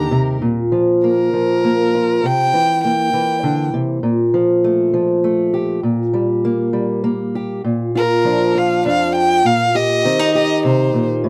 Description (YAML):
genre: acoustic folk-pop ballad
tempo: 100 BPM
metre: 3/4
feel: straight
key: Bb major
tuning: A4 = 441 Hz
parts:
  - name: warm violin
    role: melody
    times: 0.0-3.7, 8.0-11.1 s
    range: Bb4 to Bb5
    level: -20 LUFS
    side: equal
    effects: none
  - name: fingerpicked old ladder-braced acoustic guitar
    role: accompaniment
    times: 0.0-11.3 s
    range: F2 to G4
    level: -18 LUFS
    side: equal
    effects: none
room: light reverb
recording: dry, close 1970s-style studio recording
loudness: -17 LUFS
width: mono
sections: 0.4-7.6 A section; 7.6-11.3 B section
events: none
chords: 0.4 Bb5; 2.2 C7; 4.0 Fadd9/Bb; 5.8 Gm/Bb; 7.6 Bb; 9.4 Cm/Bb